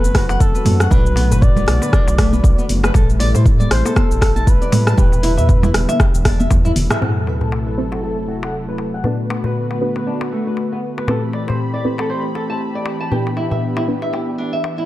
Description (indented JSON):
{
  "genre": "afro house",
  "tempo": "118 BPM",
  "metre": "4/4",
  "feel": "swing 57% on 16ths",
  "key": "E minor",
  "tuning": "A4 = 439 Hz",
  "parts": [
    { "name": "expressive portamento lead", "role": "melody", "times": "0.0-6.0 s", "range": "A4 to D5", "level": "-25 LUFS", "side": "left 1 dB", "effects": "chorus, digital delay" },
    { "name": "warm analog pad", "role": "sustained chords", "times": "0.0-14.9 s", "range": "C3 to B5", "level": "-24 LUFS", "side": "equal", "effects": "chorus, sidechain pumping" },
    { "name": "flamenco guitar", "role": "arpeggios", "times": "0.0-14.8 s", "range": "A3 to A5", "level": "-25 LUFS", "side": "equal", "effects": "sidechain pumping, low-pass filter, digital delay" },
    { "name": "round analog bass", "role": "bass", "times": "0.0-6.9 s", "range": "E1 to A2", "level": "-17 LUFS", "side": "equal", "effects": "sidechain pumping" },
    { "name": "afro-pop drum kit", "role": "drums", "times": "0.0-14.8 s", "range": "hi-hat, rim click, shaker, toms", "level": "-22 LUFS", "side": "equal", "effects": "low-pass filter on perc, low-pass filter on hats, low-pass filter on snare, low-pass filter on toms" },
    { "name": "electronic kick drum", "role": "drums", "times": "0.1-6.6 s", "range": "none", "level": "-14 LUFS", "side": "equal", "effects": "none" },
    { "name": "congas", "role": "percussion", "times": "0.3-7.0 s", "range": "none", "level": "-24 LUFS", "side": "right 2 dB", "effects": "none" },
    { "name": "darbuka", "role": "percussion", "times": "0.3-14.8 s", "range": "none", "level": "-24 LUFS", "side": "left 3 dB", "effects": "none" },
    { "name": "deep mellow chord stab", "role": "stabs", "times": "7.0-14.9 s", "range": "B3 to C5", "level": "-26 LUFS", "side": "right 1 dB", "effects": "chorus, sidechain pumping, digital delay" },
    { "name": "sub drop", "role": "sound effects", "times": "7.0-9.0 s", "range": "none", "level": "-26 LUFS", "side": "equal", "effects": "none" }
  ],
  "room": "little or no reverb",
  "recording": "dark, warm production",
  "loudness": "-14 LUFS",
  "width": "side -16 dB against mid",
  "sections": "0.0-7.0 A section; 7.0-14.9 B section",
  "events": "drum fill 6.5-7.0; band accent 6.9; impact 7.0-9.0; filter sweep on nylon-string guitar 7.0-14.9",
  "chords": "0.0 F#m7b5; 0.9 Bm7; 2.9 Am9; 5.0 Em7; 7.0 F#m7b5; 9.0 Bm7; 11.1 Am9; 13.1 Em7"
}